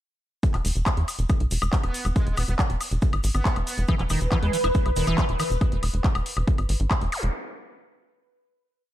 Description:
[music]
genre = psychedelic trance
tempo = 139 BPM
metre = 4/4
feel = straight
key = E major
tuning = A4 = 441 Hz
[part]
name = electronic kick drum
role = drums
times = 0.4-7.0 s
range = none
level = -23 LUFS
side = equal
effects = small room ambience
[part]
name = techno drum kit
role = drums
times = 0.4-7.3 s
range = handclaps, hi-hat, woodblock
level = -30 LUFS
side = left 2 dB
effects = small room ambience
[part]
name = tube shaker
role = percussion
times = 0.4-5.6 s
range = none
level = -39 LUFS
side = left 1 dB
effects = none
[part]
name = tight sequencer bass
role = bass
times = 0.5-7.3 s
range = E1 to E2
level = -24 LUFS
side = equal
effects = none
[part]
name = metallic wobble bass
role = second line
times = 1.8-4.0 s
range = G#3 to B3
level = -38 LUFS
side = right 2 dB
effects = chorus, sidechain pumping, high-pass filter, tape echo
[part]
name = bubbling stepped-filter texture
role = sustained chords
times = 4.2-5.6 s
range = B4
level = -30 LUFS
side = equal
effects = chorus, built-in reverb, sidechain pumping
[part]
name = liquid acid bass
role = riff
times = 3.9-5.4 s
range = D#3 to E4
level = -28 LUFS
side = equal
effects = chorus, auto-pan, cassette tape, sidechain pumping, tape echo
[part]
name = zap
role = sound effects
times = 7.1-7.2 s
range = none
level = -33 LUFS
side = equal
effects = none
[sound]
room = little or no reverb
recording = dark, warm production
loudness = -22 LUFS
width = side -13 dB against mid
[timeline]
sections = 0.4-7.3 groove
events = none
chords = 0.4 E5

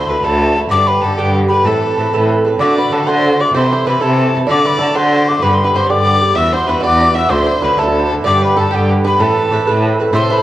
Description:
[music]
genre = celtic folk, Celtic jig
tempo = 127 BPM (dotted quarters)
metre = 6/8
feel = straight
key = unclear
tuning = A4 = 439 Hz
[part]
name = breathy mellow mid whistle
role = melody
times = 0.0-10.4 s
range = G5 to E6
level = -16 LUFS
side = left 2 dB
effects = slapback echo
[part]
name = rich fiddle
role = second line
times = 0.0-10.4 s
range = G4 to E5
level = -22 LUFS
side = left 1 dB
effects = none
[part]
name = Irish bouzouki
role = accompaniment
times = 0.0-10.4 s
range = G2 to B4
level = -17 LUFS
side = right 3 dB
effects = none
[part]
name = rich cello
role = bass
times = 0.1-10.3 s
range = D2 to D3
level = -16 LUFS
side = equal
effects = none
[part]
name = bluegrass banjo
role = second line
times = 2.6-10.4 s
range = G4 to E5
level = -23 LUFS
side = right 4 dB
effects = none
[sound]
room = wet recital hall reverb, RT60 1.8 s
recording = worn, warbling old tape, cassette tape, warbly pitch drift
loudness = -11 LUFS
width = side -14 dB against mid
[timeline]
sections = 0.0-2.6 A section; 2.6-10.1 A section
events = none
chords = 0.0 Dsus2; 0.7 G; 1.7 Amadd9; 2.6 D; 3.5 Am/C; 4.5 D; 5.4 G; 6.4 Emadd9; 7.3 Dsus2; 8.2 G; 9.2 Amadd9

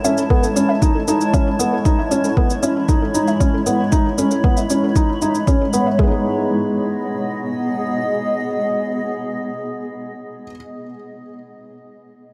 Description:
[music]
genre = piano and strings electronica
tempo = 116 BPM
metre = 4/4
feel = straight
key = G# phrygian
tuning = A4 = 440 Hz
[part]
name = granular cloud pad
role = sustained chords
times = 0.0-10.4 s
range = G#3 to B5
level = -24 LUFS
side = equal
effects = built-in reverb, sidechain pumping
[part]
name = warbly dusty pluck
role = arpeggios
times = 0.0-6.2 s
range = G#4 to E5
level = -30 LUFS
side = equal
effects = chorus, sidechain pumping, delay
[part]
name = felt-muted upright piano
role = riff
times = 0.0-10.5 s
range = G#3 to G#4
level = -22 LUFS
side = equal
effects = delay
[part]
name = shaker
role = drums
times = 0.0-5.8 s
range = none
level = -29 LUFS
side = equal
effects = none
[part]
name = electronic kick drum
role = drums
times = 0.3-6.1 s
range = none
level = -19 LUFS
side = equal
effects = none
[sound]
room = light reverb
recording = none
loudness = -18 LUFS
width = mono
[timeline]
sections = 0.0-6.0 A section; 6.0-10.1 B section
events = none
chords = 0.0 A/G#; 6.0 G#m

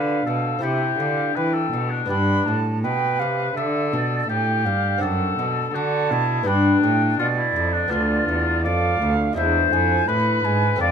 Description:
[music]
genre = classical, baroque-style sonata movement with continuo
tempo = 83 BPM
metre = 4/4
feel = straight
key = unclear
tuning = A4 = 441 Hz
[part]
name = warm oboe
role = melody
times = 0.0-10.9 s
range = D4 to D5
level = -23 LUFS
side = left 7 dB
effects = none
[part]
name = bright wooden flute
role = second line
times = 0.0-10.9 s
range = D5 to B5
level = -25 LUFS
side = right 8 dB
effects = none
[part]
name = lute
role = accompaniment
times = 0.0-10.9 s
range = D2 to A4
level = -27 LUFS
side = left 2 dB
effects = none
[part]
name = rich cello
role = bass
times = 0.0-10.9 s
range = D2 to E3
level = -23 LUFS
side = right 1 dB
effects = none
[sound]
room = moderate recital hall reverb, RT60 1.8 s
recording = close, detailed microphones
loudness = -18 LUFS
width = side -7 dB against mid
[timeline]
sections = 0.0-10.9 A section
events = none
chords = 0.0 G7; 0.6 C; 2.1 G; 5.0 D7/F#; 6.5 G; 7.9 Bdim/D; 9.4 E7

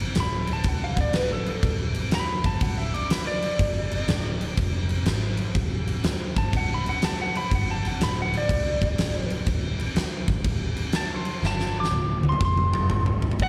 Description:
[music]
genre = blues rock power trio and southern rock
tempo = 122 BPM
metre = 4/4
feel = swing 66% on 8ths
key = D mixolydian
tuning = A4 = 445 Hz
[part]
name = vintage muted picked electric bass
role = bass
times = 0.0-13.5 s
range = D1 to C2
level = -29 LUFS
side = equal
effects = none
[part]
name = huge arena drum kit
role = drums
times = 0.1-13.5 s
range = crash cymbal, hi-hat, kick drum, snare drum, toms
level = -28 LUFS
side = equal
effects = none
[part]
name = lightly driven lead guitar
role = second line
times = 0.2-13.4 s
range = A4 to D6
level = -32 LUFS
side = equal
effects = slapback echo
[part]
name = smooth overdriven lead guitar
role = melody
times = 13.4-13.5 s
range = F#5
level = -26 LUFS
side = equal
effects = none
[sound]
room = small room ambience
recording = live gig heard through the venue's PA, recital hall reverb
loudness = -25 LUFS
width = mono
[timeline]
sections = 0.0-13.4 A section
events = lead electric guitar solo 0.0-13.4; drum fill 11.4-13.4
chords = 0.2 D5; 3.6 G5; 4.1 N.C.; 5.6 D; 7.5 Gsus2; 8.0 N.C.; 11.4 Gsus2; 11.9 Csus2/D; 12.4 F5; 12.9 G#

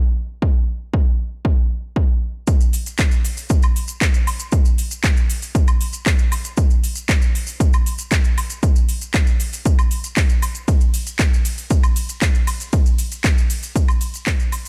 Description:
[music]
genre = nu-disco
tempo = 117 BPM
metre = 4/4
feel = straight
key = none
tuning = none
[part]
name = electronic kick drum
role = drums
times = 0.4-14.4 s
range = none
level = -19 LUFS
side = equal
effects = overdrive
[part]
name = house drum kit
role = drums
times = 2.5-14.7 s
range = cabasa, handclaps, hi-hat, ride cymbal, woodblock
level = -27 LUFS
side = equal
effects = overdrive
[part]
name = maracas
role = percussion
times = 2.5-14.7 s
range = none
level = -35 LUFS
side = equal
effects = none
[sound]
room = little or no reverb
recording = none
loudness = -19 LUFS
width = mono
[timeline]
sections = 0.0-2.5 A section; 2.5-14.7 B section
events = drop 2.5-14.7; fade-out 13.4-14.7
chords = none

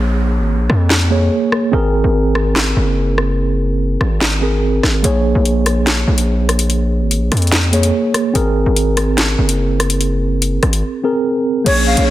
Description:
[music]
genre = hip hop, drill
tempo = 145 BPM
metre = 4/4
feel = half-time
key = unclear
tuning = A4 = 439 Hz
[part]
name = mellow tine electric piano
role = accompaniment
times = 0.0-12.1 s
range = Bb3 to Db5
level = -18 LUFS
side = right 2 dB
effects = medium stereo tremolo
[part]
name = distorted 808-style bass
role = bass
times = 0.0-12.1 s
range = Gb1 to F2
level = -15 LUFS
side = equal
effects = distortion
[part]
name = downlifter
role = sound effects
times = 0.0-1.7, 11.7-12.1 s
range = none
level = -28 LUFS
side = equal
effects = none
[part]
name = drill drum kit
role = drums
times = 0.7-12.1 s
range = crash cymbal, handclaps, hi-hat, rim click, snare drum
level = -18 LUFS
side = left 1 dB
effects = none
[part]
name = breathy bright concert flute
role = melody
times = 11.7-12.0 s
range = Db5 to F5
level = -16 LUFS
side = equal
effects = tape echo
[part]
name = soft octave-layered synth lead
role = second line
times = 11.7-12.1 s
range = Db5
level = -20 LUFS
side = left 1 dB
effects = chorus, phaser, tape echo
[sound]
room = light reverb, digital ambience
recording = dense, heavily limited modern master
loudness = -13 LUFS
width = side -14 dB against mid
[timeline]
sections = 0.0-11.7 A section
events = break 0.0-5.0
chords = 0.0 Bbm7; 1.7 Abadd9; 5.0 Bbm7; 8.4 Abadd9

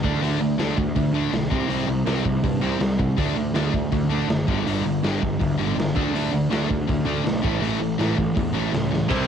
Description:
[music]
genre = punk rock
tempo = 162 BPM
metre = 4/4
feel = straight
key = unclear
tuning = A4 = 440 Hz
[part]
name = overdriven semi-hollow guitar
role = riff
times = 0.0-9.3 s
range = G2 to D4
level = -25 LUFS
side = right 10 dB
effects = cassette tape
[part]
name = sludgy distorted guitar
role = riff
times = 0.0-9.3 s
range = G2 to D4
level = -26 LUFS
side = left 11 dB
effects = overdrive, cassette tape
[part]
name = fuzz picked electric bass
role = bass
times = 0.0-9.2 s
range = F#1 to G2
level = -27 LUFS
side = equal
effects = overdrive
[part]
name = raw garage drum kit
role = drums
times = 0.0-9.2 s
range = crash cymbal, hi-hat, kick drum, snare drum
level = -27 LUFS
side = equal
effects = cassette tape
[part]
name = dark smooth lead guitar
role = melody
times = 9.1-9.3 s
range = C4 to C5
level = -27 LUFS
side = right 1 dB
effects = overdrive, cassette tape
[part]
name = scooped high-gain guitar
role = riff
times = 9.1-9.3 s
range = C3 to E4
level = -25 LUFS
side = equal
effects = distortion, cassette tape
[sound]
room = little or no reverb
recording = home recording on cassette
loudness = -20 LUFS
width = side -8 dB against mid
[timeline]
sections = 0.0-9.1 A section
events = drum fill 8.9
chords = 0.0 D5; 1.5 C5; 3.2 D5; 4.5 G5; 6.0 D5; 7.4 A

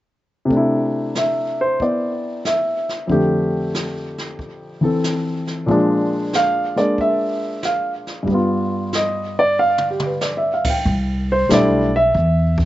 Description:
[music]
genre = jazz piano trio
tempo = 93 BPM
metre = 4/4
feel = swing 67% on 8ths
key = C major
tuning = A4 = 440 Hz
[part]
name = warm baby grand piano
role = melody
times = 0.5-12.6 s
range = F2 to G5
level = -17 LUFS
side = equal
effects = slapback echo
[part]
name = jazz brush drum kit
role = drums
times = 0.5-12.7 s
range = brushed snare drum, crash cymbal, hi-hat, kick drum, snare drum, toms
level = -27 LUFS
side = right 1 dB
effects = none
[part]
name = upright bass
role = bass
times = 10.9-12.7 s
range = B1 to E2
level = -18 LUFS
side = equal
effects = none
[sound]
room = little or no reverb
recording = nothing above 7.8 kHz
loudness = -17 LUFS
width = side -15 dB against mid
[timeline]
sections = 0.5-10.9 A section; 10.9-12.7 B section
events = drum fill 9.6-10.2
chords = 0.5 C69; 3.1 F69; 5.7 Bb7; 8.3 G7; 10.9 C69

